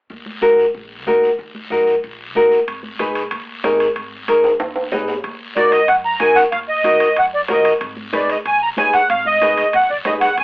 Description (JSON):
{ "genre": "latin, cumbia", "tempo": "187 BPM", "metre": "4/4", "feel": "straight", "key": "Eb harmonic minor", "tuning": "A4 = 440 Hz", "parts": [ { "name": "upright bass", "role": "bass", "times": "0.1-10.4 s", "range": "Ab1 to Gb2", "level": "-38 LUFS", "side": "equal", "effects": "none" }, { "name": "guiro", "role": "percussion", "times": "0.1-10.4 s", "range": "none", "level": "-33 LUFS", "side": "left 1 dB", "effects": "none" }, { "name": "congas", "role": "percussion", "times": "0.3-10.2 s", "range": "none", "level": "-36 LUFS", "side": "equal", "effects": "none" }, { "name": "nylon-string guitar", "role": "accompaniment", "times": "0.4-10.3 s", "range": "Eb4 to Cb5", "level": "-15 LUFS", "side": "left 1 dB", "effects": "none" }, { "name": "timbales", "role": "percussion", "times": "2.7-10.4 s", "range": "none", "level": "-25 LUFS", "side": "right 1 dB", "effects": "none" }, { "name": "accordion", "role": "melody", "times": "5.6-10.4 s", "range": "D5 to Bb5", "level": "-14 LUFS", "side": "right 1 dB", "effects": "light tremolo tuning" } ], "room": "moderate studio reverb, RT60 0.5 s", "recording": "telephone sound", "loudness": "-14 LUFS", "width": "side -24 dB against mid", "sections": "0.1-5.2 A section; 5.2-10.4 B section", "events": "drum fill 4.4-5.2", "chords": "0.1 Ebm; 2.7 Abm; 5.2 Ebm; 7.8 Abm" }